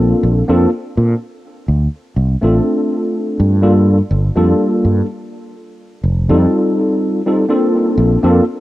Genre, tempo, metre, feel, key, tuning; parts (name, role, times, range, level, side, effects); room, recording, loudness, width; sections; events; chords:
vaporwave; 62 BPM; 4/4; swing 54% on 16ths; Bb major; A4 = 440 Hz
tine electric piano; accompaniment; 0.0-8.4 s; G3 to A4; -14 LUFS; equal; ensemble chorus, analog delay
fretless electric bass; bass; 0.0-8.4 s; F1 to Bb2; -13 LUFS; equal
little or no reverb; rough home demo mix, cassette tape; -12 LUFS; side -16 dB against mid
0.0-7.5 A section; 7.5-8.6 B section
0.0 Bbmaj7; 1.7 Dm7; 3.6 Gm7; 5.1 F9; 7.5 Bbmaj7